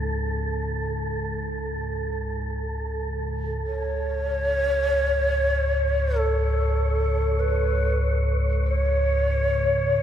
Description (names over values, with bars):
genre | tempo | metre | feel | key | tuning
dark ambient drone | free time | none | none | unclear | A4 = 440 Hz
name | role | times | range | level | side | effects
analog drone | drone | 0.0-10.0 s | C#2 to G#2 | -25 LUFS | equal | lush chorus
wind-like tuned noise texture | texture | 0.0-10.0 s | A4 to C#5 | -30 LUFS | right 1 dB | built-in reverb
breathy mellow long shakuhachi | melody | 3.7-10.0 s | A4 to C#5 | -24 LUFS | equal | tape echo
room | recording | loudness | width
wet cathedral reverb, RT60 6.3 s | none | -22 LUFS | side -10 dB against mid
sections
0.0-3.7 A section; 3.7-10.0 B section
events
filter sweep on synth drone 0.0-3.7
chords
0.0 Amaj7/C#